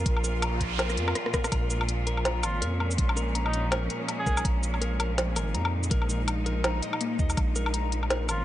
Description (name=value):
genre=half-time drum and bass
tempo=164 BPM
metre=4/4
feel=swing 58% on 16ths, half-time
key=Bb minor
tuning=A4 = 441 Hz
part: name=bright studio cello section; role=sustained chords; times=0.0-8.4 s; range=Bb2 to F4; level=-33 LUFS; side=equal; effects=sidechain pumping
part: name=clean electric guitar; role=arpeggios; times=0.0-8.4 s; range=Bb3 to Bb5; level=-36 LUFS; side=left 4 dB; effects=dub echo
part: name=saturated sub bass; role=bass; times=0.0-8.4 s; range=Ab1 to F2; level=-29 LUFS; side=equal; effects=none
part: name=electronic kick drum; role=drums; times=0.1-7.5 s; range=none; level=-27 LUFS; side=equal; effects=none
part: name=organic electronic drum kit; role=drums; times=0.1-8.4 s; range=hi-hat, rim click, shaker, snare drum, woodblock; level=-30 LUFS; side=left 1 dB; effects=none
part: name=noise sweep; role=sound effects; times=0.2-1.5 s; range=none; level=-38 LUFS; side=right 5 dB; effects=none
part: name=trumpet with cup mute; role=melody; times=2.4-4.4, 8.3-8.4 s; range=Eb4 to Ab4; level=-35 LUFS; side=right 1 dB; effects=vintage 12-bit sampler grit, digital delay
room=light reverb, digital ambience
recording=nothing above 10.3 kHz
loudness=-25 LUFS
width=side -13 dB against mid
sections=0.0-8.4 A section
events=noise sweep 0.2-1.5; drum fill 0.8-1.5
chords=0.0 Bbm